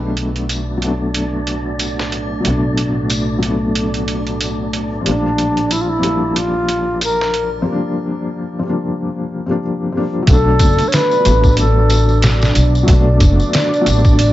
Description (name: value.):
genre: trip hop.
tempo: 92 BPM.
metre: 4/4.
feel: swing 58% on 16ths.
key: unclear.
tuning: A4 = 440 Hz.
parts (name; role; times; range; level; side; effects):
felt-muted upright piano; accompaniment; 0.0-14.3 s; E#3 to D4; -20 LUFS; left 2 dB; tremolo, low-pass filter, tape echo.
dark analog pad; sustained chords; 0.0-14.3 s; A3 to D5; -23 LUFS; right 1 dB; chorus.
upright bass; bass; 0.0-14.3 s; F#1 to B1; -17 LUFS; equal; none.
wind-like tuned noise texture; texture; 0.4-14.3 s; D4 to D5; -29 LUFS; right 3 dB; built-in reverb.
trip hop sampler-style drum kit; drums; 0.2-14.3 s; hi-hat, kick drum, snare drum; -16 LUFS; equal; high-pass filter on hats, vintage 12-bit sampler grit, high-pass filter on kick, high-pass filter on snare.
tambourine and triangle; percussion; 0.5-14.3 s; none; -28 LUFS; left 2 dB; none.
baroque flute; melody; 5.1-12.5 s; D4 to C#5; -18 LUFS; equal; tape echo.
room: small room ambience.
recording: nothing above 7.7 kHz.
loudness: -13 LUFS.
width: side -14 dB against mid.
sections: 0.0-10.3 A section; 10.3-14.3 B section.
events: filter sweep on analog synth pad 0.0-10.3; break 7.7-10.3.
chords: 0.0 Bm7; 5.1 A#6; 10.3 Bm7.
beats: 0.49 1.14 1.80 | 2.45 3.10 3.75 4.41 | 5.06 5.71 6.36 7.01 | 7.67 8.32 8.97 9.62 | 10.27 10.93 11.58 12.23 | 12.88 13.54 14.19.